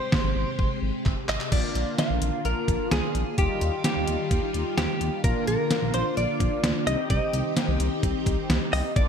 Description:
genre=synth-pop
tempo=129 BPM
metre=4/4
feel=straight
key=unclear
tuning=A4 = 440 Hz
part: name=direct-recorded clean electric guitar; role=melody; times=0.0-9.1 s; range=G4 to F5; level=-29 LUFS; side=equal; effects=analog chorus, ping-pong delay
part: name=string machine, full ensemble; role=sustained chords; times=0.0-9.1 s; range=C3 to G4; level=-33 LUFS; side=equal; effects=phaser, ensemble chorus
part: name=detuned 8-bit digital drum machine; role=drums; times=0.1-9.1 s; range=crash cymbal, handclaps, hi-hat, kick drum, snare drum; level=-26 LUFS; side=equal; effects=gated reverb
part: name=smooth synth bass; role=bass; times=0.2-9.1 s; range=Ab1 to Eb2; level=-28 LUFS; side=equal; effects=none
part: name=mellow synth brass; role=accompaniment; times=1.5-9.1 s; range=G3 to G4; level=-31 LUFS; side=left 1 dB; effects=chorus, phaser
room=light reverb, digital ambience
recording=bright 1980s-style digital production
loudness=-23 LUFS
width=side -7 dB against mid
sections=0.0-1.5 A section; 1.5-9.1 B section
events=drum fill 1.1-1.5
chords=0.0 Abmaj7; 1.5 Bb; 3.4 Ebadd9; 5.2 Bb; 6.9 Cm

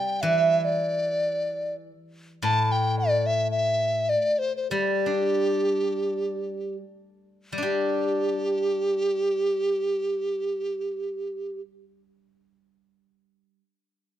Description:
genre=chinese traditional, Chinese chamber ensemble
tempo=73-109 BPM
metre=4/4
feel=rubato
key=unclear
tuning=A4 = 440 Hz
part: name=mellow hollow large dizi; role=melody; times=0.0-11.6 s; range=G4 to A5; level=-24 LUFS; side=equal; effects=none
part: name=steel-string zither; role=accompaniment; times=0.0-13.6 s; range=A2 to G4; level=-27 LUFS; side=equal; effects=none
room=light reverb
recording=close, detailed microphones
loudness=-23 LUFS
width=side -11 dB against mid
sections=0.0-7.6 A section; 7.6-10.8 B section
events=slowing down 2.4-7.6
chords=none

